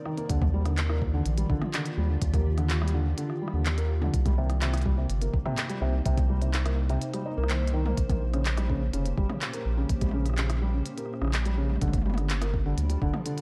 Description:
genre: IDM.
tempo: 125 BPM.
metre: 4/4.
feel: straight.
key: Eb major.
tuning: A4 = 440 Hz.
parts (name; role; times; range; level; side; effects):
glassy FM pad; sustained chords; 0.0-13.4 s; Bb2 to D5; -38 LUFS; equal; ensemble chorus, built-in reverb.
felt-muted upright piano; arpeggios; 0.1-13.4 s; C3 to Eb4; -35 LUFS; equal; delay.
glitchy drum kit; drums; 0.1-13.4 s; handclaps, hi-hat, rim click, toms; -37 LUFS; equal; small room reverb, digital delay.
round analog bass; bass; 0.3-13.1 s; F1 to Eb2; -29 LUFS; equal; none.
electronic kick drum; drums; 0.3-13.1 s; none; -31 LUFS; equal; small room reverb.
room: light reverb, digital ambience.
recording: dark, warm production.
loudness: -27 LUFS.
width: mono.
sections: 0.3-13.4 A section.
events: none.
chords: 0.3 Ebmaj7; 4.1 Cm7; 8.0 Bbm6; 11.8 Gm7.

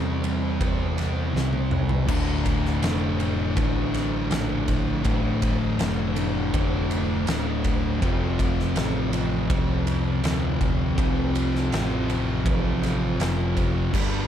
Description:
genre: stoner and doom metal.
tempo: 81 BPM.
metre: 4/4.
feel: straight.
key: D minor.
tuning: A4 = 440 Hz.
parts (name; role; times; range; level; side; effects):
fuzz guitar; riff; 0.0-14.3 s; D2 to C4; -31 LUFS; left 1 dB; distortion.
thick fuzz guitar; riff; 0.0-14.3 s; D2 to C4; -28 LUFS; left 9 dB; distortion.
thick fuzz guitar; riff; 0.0-14.3 s; D2 to C4; -29 LUFS; right 7 dB; distortion.
overdriven picked electric bass; bass; 0.0-14.3 s; D1 to E2; -28 LUFS; equal; none.
oversized low-tuned drum kit; drums; 0.2-14.1 s; crash cymbal, kick drum, ride cymbal, snare drum, toms; -27 LUFS; equal; none.
room: little or no reverb.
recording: dark, warm production.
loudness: -22 LUFS.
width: side -10 dB against mid.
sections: 0.0-2.1 A section; 2.1-14.3 B section.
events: drum fill 1.4-2.1.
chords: 0.0 C; 2.1 Dm; 8.0 F.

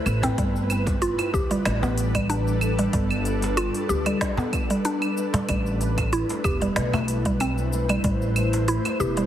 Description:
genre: organic downtempo.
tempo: 94 BPM.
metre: 4/4.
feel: swing 54% on 16ths.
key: unclear.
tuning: A4 = 440 Hz.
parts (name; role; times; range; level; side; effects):
ethereal airy pad; sustained chords; 0.0-9.3 s; G3 to C5; -29 LUFS; left 1 dB; ensemble chorus, built-in reverb, sidechain pumping, shimmer reverb.
upright bass; bass; 0.1-9.2 s; E1 to D2; -26 LUFS; equal; sidechain pumping.
organic electronic drum kit; drums; 0.1-9.3 s; cabasa, claves, hi-hat, snare drum; -30 LUFS; right 1 dB; overdrive.
mallet-like synth pluck; arpeggios; 0.2-9.3 s; G3 to G4; -26 LUFS; equal; chorus, digital delay, shimmer reverb.
cajon; percussion; 0.2-9.0 s; none; -31 LUFS; right 1 dB; none.
electronic kick drum; drums; 0.4-8.2 s; none; -28 LUFS; equal; overdrive.
room: moderate recital hall reverb, RT60 1.7 s.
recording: heavily compressed radio sound, multiband compression.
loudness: -21 LUFS.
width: side -11 dB against mid.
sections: 0.0-9.3 A section.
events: none.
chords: 0.4 G; 5.5 Am7.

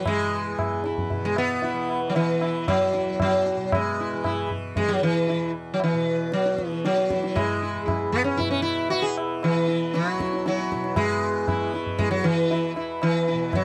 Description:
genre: indian classical, Hindustani.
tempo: 116 BPM.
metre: 7/4.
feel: straight.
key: unclear.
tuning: A4 = 440 Hz.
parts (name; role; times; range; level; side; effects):
sitar; melody; 0.0-13.6 s; E3 to G#4; -25 LUFS; equal; none.
tanpura; drone; 0.0-13.6 s; E2 to E3; -36 LUFS; equal; none.
tabla; percussion; 0.1-13.6 s; none; -32 LUFS; equal; none.
room: little or no reverb.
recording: dry, close 1970s-style studio recording.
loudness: -24 LUFS.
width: mono.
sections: 0.0-11.0 A section; 11.0-13.6 B section.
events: none.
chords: none.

